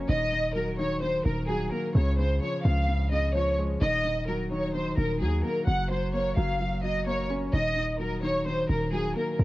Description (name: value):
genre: hip hop, trap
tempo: 129 BPM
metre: 4/4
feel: half-time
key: Eb dorian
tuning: A4 = 440 Hz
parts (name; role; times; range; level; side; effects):
- felt-muted upright piano; accompaniment; 0.0-9.4 s; Db3 to Db4; -31 LUFS; left 1 dB; low-pass filter, cassette tape, plate reverb
- warm 808-style bass; bass; 0.0-9.4 s; Eb1 to Eb2; -28 LUFS; equal; none
- warm studio violin section; melody; 0.1-9.4 s; Ab4 to Gb5; -29 LUFS; equal; low-pass filter, plate reverb
room: moderate booth ambience, RT60 0.2 s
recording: home recording on cassette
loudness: -25 LUFS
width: side -17 dB against mid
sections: 0.0-9.4 A section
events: none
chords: 0.1 Ebm; 2.0 Db; 3.8 Ebm; 5.7 Gb; 7.5 Ebm